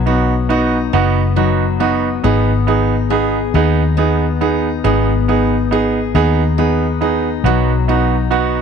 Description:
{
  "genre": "six-eight pop ballad",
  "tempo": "46 BPM (dotted quarters)",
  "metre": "6/8",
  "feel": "straight",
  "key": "unclear",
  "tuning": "A4 = 439 Hz",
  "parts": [
    { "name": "picked steel-string acoustic guitar", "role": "arpeggios", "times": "0.0-8.6 s", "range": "F#3 to G#4", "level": "-20 LUFS", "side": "left 15 dB", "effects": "none" },
    { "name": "vintage muted fingered electric bass", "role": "bass", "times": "0.0-8.6 s", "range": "F#1 to D#2", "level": "-17 LUFS", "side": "left 2 dB", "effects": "none" },
    { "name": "bright concert grand piano", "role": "accompaniment", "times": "0.1-8.6 s", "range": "B3 to G#4", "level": "-16 LUFS", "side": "right 9 dB", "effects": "none" }
  ],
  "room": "light reverb, studio reverb",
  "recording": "1960s-style stereo with parts hard left and right",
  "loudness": "-13 LUFS",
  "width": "side -7 dB against mid",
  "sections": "0.0-8.6 A section",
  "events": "none",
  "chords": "0.0 B; 2.2 G#m; 7.4 B"
}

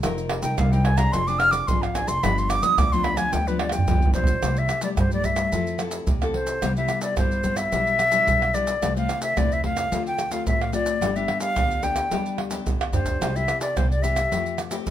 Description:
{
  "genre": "samba and choro",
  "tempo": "109 BPM",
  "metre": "4/4",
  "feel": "straight",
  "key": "C major from 4.4 s",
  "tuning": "A4 = 441 Hz",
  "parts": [
    { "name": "nylon-string guitar", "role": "accompaniment", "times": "0.0-14.9 s", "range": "G2 to Bb4", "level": "-29 LUFS", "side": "left 6 dB", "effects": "none" },
    { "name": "upright bass", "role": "bass", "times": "0.0-14.9 s", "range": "F1 to G2", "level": "-27 LUFS", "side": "equal", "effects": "none" },
    { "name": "maracas, surdo, pandeiro and tamborim", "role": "percussion", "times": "0.0-14.9 s", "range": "none", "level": "-26 LUFS", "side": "right 2 dB", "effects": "none" },
    { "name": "reedy concert flute", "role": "melody", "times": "0.4-14.6 s", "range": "B4 to F6", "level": "-24 LUFS", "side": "equal", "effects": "none" }
  ],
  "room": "moderate studio reverb, RT60 0.7 s",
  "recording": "minimal, uncompressed stereo recording",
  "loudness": "-20 LUFS",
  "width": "side -11 dB against mid",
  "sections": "0.0-4.4 A section; 4.4-14.9 B section",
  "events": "flute solo 0.0-4.4; drum fill 3.6-4.4, 12.8-13.2",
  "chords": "0.0 F7sus4; 1.1 Dm7b5/F; 2.2 G7; 4.4 C6; 5.5 Fmaj7; 6.6 Cmaj7; 7.7 Em7/B; 8.8 Am/C; 9.9 Dm7; 11.0 G; 13.2 Cmaj7; 14.3 Fadd9"
}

